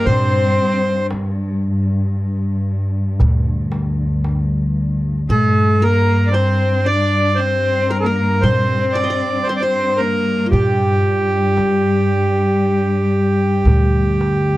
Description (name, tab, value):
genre	Arabic maqam ensemble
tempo	115 BPM (eighths)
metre	10/8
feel	straight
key	G maqam bayati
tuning	A4 = 440 Hz
part	accordion	melody	0.0-14.6 s	G4 to D5	-18 LUFS	right 2 dB	none
part	qanun	second line	0.0-14.6 s	F4 to Eb5	-29 LUFS	right 1 dB	none
part	rich cello	second line	0.0-14.6 s	G3 to D4	-22 LUFS	left 4 dB	none
part	upright bass	bass	0.0-14.6 s	D2 to G3	-19 LUFS	equal	none
part	dark symphonic cello section	drone	0.0-14.6 s	G2	-22 LUFS	left 1 dB	none
part	darbuka	percussion	0.1-14.4 s	none	-21 LUFS	right 1 dB	none
room	light reverb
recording	dry, close 1970s-style studio recording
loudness	-14 LUFS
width	side -17 dB against mid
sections	0.0-14.6 A section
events	none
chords	none